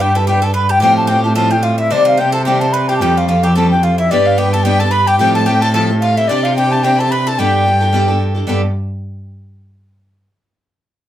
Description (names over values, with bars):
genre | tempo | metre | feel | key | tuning
celtic folk, Celtic reel | 219 BPM | 4/4 | swing 56% on 8ths | G mixolydian | A4 = 440 Hz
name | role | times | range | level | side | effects
mellow wooden flute | melody | 0.0-8.2 s | D5 to B5 | -15 LUFS | left 1 dB | plate reverb
Irish bouzouki | second line | 0.0-8.2 s | D4 to B4 | -21 LUFS | equal | none
picked acoustic archtop guitar | accompaniment | 0.0-8.6 s | A2 to C5 | -19 LUFS | right 1 dB | none
muted cello | bass | 0.0-8.6 s | F2 to C3 | -16 LUFS | equal | none
clear fiddle | second line | 4.1-8.2 s | D5 to B5 | -22 LUFS | left 2 dB | none
room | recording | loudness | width
moderate studio reverb, RT60 0.6 s | none | -11 LUFS | side -12 dB against mid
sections
0.0-8.5 A section; 8.5-9.6 B section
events
none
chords
0.0 G; 0.8 Fadd9/A; 1.9 Cm; 3.0 Fadd9; 4.1 G; 5.2 Fadd9/A; 6.3 Csus2; 7.4 Gadd9